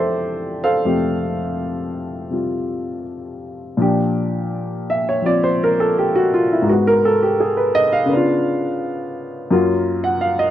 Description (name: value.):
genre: solo jazz.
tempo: 84 BPM.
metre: 4/4.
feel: swing 68% on 8ths, rubato.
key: unclear.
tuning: A4 = 440 Hz.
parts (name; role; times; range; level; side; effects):
warm upright piano; solo; 0.0-10.5 s; F2 to Gb5; -16 LUFS; equal; none.
room: little or no reverb.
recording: dry, close 1970s-style studio recording.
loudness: -16 LUFS.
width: side -11 dB against mid.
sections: 0.0-3.8 A section; 3.8-10.5 B section.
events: upright piano solo 3.8-10.5.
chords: 0.0 Fmaj9; 3.8 Bb6; 6.7 Abm7; 8.1 Db7b9; 9.5 Gbmaj7.